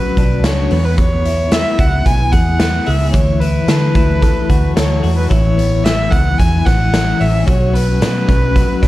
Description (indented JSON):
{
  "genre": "jangly indie pop",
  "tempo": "111 BPM",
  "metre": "4/4",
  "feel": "straight",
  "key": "A major",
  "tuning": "A4 = 440 Hz",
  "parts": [
    { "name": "warm violin", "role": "melody", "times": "0.0-8.9 s", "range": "B4 to G#5", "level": "-20 LUFS", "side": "right 1 dB", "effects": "none" },
    { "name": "twelve-string electric guitar", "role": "arpeggios", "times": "0.0-8.9 s", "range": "E3 to G#4", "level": "-20 LUFS", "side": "left 5 dB", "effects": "tremolo, slapback echo" },
    { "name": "vintage muted fingered electric bass", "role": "bass", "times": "0.2-8.9 s", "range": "A1 to D3", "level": "-16 LUFS", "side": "equal", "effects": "none" },
    { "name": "raw garage drum kit", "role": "drums", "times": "0.2-8.9 s", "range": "hi-hat, kick drum, snare drum", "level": "-16 LUFS", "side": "equal", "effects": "none" }
  ],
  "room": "little or no reverb",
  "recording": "dark, warm production",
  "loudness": "-11 LUFS",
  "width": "side -16 dB against mid",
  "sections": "0.0-8.9 A section",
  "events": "none",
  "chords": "0.0 Bmadd9; 0.7 E; 3.1 Dadd9; 5.3 Aadd9; 7.5 Bsus2"
}